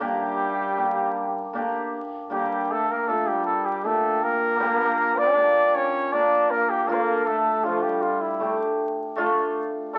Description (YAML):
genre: klezmer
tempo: 78 BPM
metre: 3/4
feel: straight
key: G minor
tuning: A4 = 440 Hz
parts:
  - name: warm cornet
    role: melody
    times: 0.0-10.0 s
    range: E4 to D5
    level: -25 LUFS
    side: equal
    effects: none
  - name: brilliant trombone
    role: second line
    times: 0.0-10.0 s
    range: F3 to D4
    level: -31 LUFS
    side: equal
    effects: none
  - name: hammered dulcimer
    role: accompaniment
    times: 0.0-10.0 s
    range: Bb2 to Bb4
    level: -29 LUFS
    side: equal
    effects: none
room: wet studio reverb, RT60 0.8 s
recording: very old 78 rpm record, vinyl crackle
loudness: -24 LUFS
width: mono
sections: 0.0-2.3 A section; 2.3-10.0 B section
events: cornet solo 2.3-10.0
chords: 0.0 Gm; 6.9 Dm